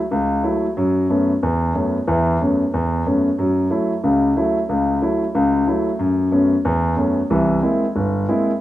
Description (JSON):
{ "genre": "jazz", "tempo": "184 BPM", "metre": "4/4", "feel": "swing 61% on 8ths", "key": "unclear", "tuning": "A4 = 442 Hz", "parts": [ { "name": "warm concert grand piano", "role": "solo", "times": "0.1-8.5 s", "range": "G1 to E4", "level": "-16 LUFS", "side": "equal", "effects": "none" } ], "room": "light reverb, studio reverb", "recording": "rough home demo mix", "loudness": "-16 LUFS", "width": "side -14 dB against mid", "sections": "0.0-8.6 A section", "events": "none", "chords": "0.0 F#m7; 0.8 Aadd9; 3.4 F#m7; 6.0 Aadd9/F#; 7.3 C7b13" }